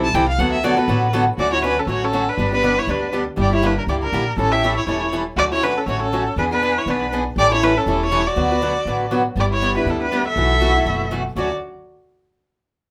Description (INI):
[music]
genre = acoustic string swing (jazz manouche)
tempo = 240 BPM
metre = 4/4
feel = swing 56% on 8ths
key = D major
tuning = A4 = 440 Hz
[part]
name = warm violin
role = second line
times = 0.0-11.5 s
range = C#4 to A5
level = -28 LUFS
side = equal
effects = none
[part]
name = picked acoustic archtop guitar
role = accompaniment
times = 0.0-11.5 s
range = B2 to B4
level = -24 LUFS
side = equal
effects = none
[part]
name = upright bass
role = bass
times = 0.0-11.5 s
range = E1 to E2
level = -26 LUFS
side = equal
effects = none
[part]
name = clear erhu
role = melody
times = 1.4-11.5 s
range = A4 to E5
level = -23 LUFS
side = equal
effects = none
[sound]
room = moderate club reverb, RT60 0.8 s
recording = none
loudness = -19 LUFS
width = mono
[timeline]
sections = 0.0-1.4 A section; 1.4-9.4 B section; 9.4-11.4 C section; 11.4-12.4 D section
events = violin solo 0.0-1.4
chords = 0.4 D6; 1.4 Dmaj7; 2.4 G; 3.4 Gm6; 4.4 A7; 5.4 Dmaj7; 6.4 E7; 7.4 A7; 8.4 D6; 9.4 G6; 10.4 B7sus4; 11.4 Dmaj7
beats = 0.14 | 0.39 0.64 0.89 1.13 | 1.38 1.63 1.88 2.13 | 2.38 2.63 2.88 3.13 | 3.38 3.63 3.88 4.13 | 4.38 4.63 4.88 5.13 | 5.38 5.63 5.88 6.12 | 6.37 6.62 6.87 7.12 | 7.37 7.62 7.87 8.12 | 8.37 8.62 8.87 9.12 | 9.37 9.62 9.87 10.12 | 10.37 10.62 10.87 11.12 | 11.37